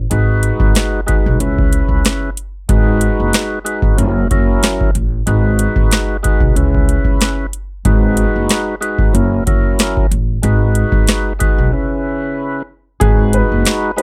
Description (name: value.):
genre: hip hop, boom-bap hip-hop.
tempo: 93 BPM.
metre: 4/4.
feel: swing 56% on 16ths.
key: G# minor.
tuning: A4 = 440 Hz.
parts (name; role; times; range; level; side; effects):
upright bass; bass; 0.0-13.6 s; F#1 to C#2; -18 LUFS; equal; none.
percussive tonewheel organ; accompaniment; 0.1-14.0 s; C#3 to B4; -21 LUFS; equal; slow rotary speaker, cassette tape, high-pass filter, low-pass filter.
booming analog drum machine; drums; 0.1-14.0 s; hi-hat, kick drum, rim click, snare drum; -18 LUFS; equal; none.
dark upright piano; melody; 13.0-14.0 s; G#4 to B4; -21 LUFS; equal; high-pass filter, low-pass filter.
room: little or no reverb.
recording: none.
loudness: -15 LUFS.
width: mono.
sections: 0.0-13.0 A section; 13.0-14.0 B section.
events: break 11.7-13.0.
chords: 0.1 G#m7; 1.4 C#m7; 2.7 G#m7; 4.0 F#7; 5.3 G#m7; 6.6 C#m7; 7.9 G#m7; 9.1 F#7; 10.4 G#m7; 11.7 C#m7; 13.0 G#m7.